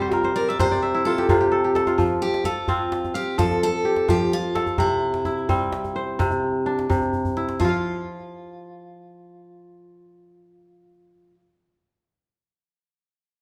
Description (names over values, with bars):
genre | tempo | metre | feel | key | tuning
west african traditional, West African string and xylophone music | 85 BPM (dotted quarters) | 12/8 | straight | unclear | A4 = 441 Hz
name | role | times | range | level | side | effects
picked steel-string acoustic guitar | melody | 0.0-11.3 s | E4 to D5 | -30 LUFS | equal | none
kora | arpeggios | 0.0-11.5 s | C3 to F5 | -24 LUFS | equal | none
djembe | percussion | 0.0-7.8 s | none | -30 LUFS | equal | none
room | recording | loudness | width
wet recital hall reverb, RT60 1.3 s | none | -22 LUFS | mono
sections
0.0-7.6 A section; 7.6-10.4 B section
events
kora fill 0.0-2.0; drum fill 7.0-7.6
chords
0.0 C5; 2.0 F; 4.8 C; 7.6 N.C.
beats
0.57 1.28 | 1.98 2.68 3.39 4.09 | 4.79 5.50 6.20 6.90 | 7.60 8.31 9.01 9.71